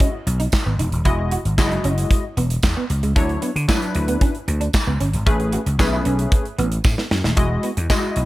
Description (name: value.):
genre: early-eighties boogie funk.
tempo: 114 BPM.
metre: 4/4.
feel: straight.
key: E major.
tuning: A4 = 440 Hz.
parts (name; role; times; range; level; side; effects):
funky polysynth comp; accompaniment; 0.0-8.3 s; F#3 to D#5; -24 LUFS; left 2 dB; chorus.
semi-hollow electric guitar; riff; 0.0-8.1 s; G#3 to F#4; -28 LUFS; right 4 dB; ensemble chorus.
modern studio drum kit; drums; 0.0-8.3 s; handclaps, hi-hat, kick drum, snare drum; -20 LUFS; equal; none.
vintage slap bass; bass; 0.3-8.3 s; D#1 to D3; -21 LUFS; equal; none.
tambourine; percussion; 0.5-8.0 s; none; -33 LUFS; right 6 dB; none.
room: small room ambience.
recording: none.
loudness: -17 LUFS.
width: side -17 dB against mid.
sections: 0.0-8.3 A section.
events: drum fill 6.8-7.4.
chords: 0.0 Emaj9; 3.2 Dmaj9; 5.3 Amaj9; 7.4 Emaj9.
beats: 0.00 0.53 | 1.05 1.58 2.11 2.63 | 3.16 3.69 4.21 4.74 | 5.27 5.79 6.32 6.84 | 7.37 7.90.